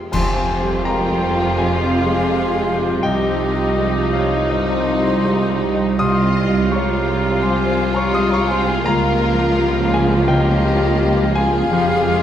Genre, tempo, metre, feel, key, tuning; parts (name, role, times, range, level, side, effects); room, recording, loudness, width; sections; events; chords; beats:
cinematic, emotional film score for orchestra; 83 BPM; 4/4; rubato; F minor; A4 = 440 Hz
warm baby grand piano; accompaniment; 0.0-12.2 s; C2 to Eb6; -22 LUFS; left 1 dB
concert harp; arpeggios; 0.0-12.2 s; C3 to F4; -27 LUFS; left 8 dB
rich studio violin section; melody; 0.1-12.2 s; Eb4 to F4; -25 LUFS; left 2 dB
dark clarinet; second line; 0.1-12.2 s; F4 to G4; -29 LUFS; right 1 dB
dark symphonic violin section; second line; 0.1-12.2 s; Eb4 to Eb5; -26 LUFS; left 2 dB
mellow silver concert flute; second line; 0.1-12.2 s; C5 to C6; -26 LUFS; left 1 dB
warm oboe; second line; 0.1-12.2 s; C5 to F5; -29 LUFS; equal
rich studio viola section; accompaniment; 0.1-12.2 s; C3 to Bb3; -26 LUFS; right 2 dB
mellow French horn section; sustained chords; 0.1-12.2 s; F3 to F4; -27 LUFS; right 1 dB
warm studio cello section; bass; 0.1-12.2 s; C2 to F2; -22 LUFS; right 2 dB
warm studio double bass section; bass; 0.1-12.2 s; F1 to Db2; -25 LUFS; right 4 dB
clash cymbals and concert bass drum; percussion; 0.1-1.6 s; -26 LUFS; equal
moderate scoring stage reverb, RT60 1.6 s; -15 LUFS; side -10 dB against mid
0.1-12.2 A section
band accent 0.1-0.9
0.1 Fmadd9; 3.0 Cm; 6.0 Fmadd9/C; 8.9 Bbm/Db; 11.7 Fmadd9
| 0.12 0.86 1.59 2.31 | 3.04 3.77 4.50 5.24 | 6.00 6.72 7.43 8.15 | 8.86 9.57 10.29 11.00 | 11.71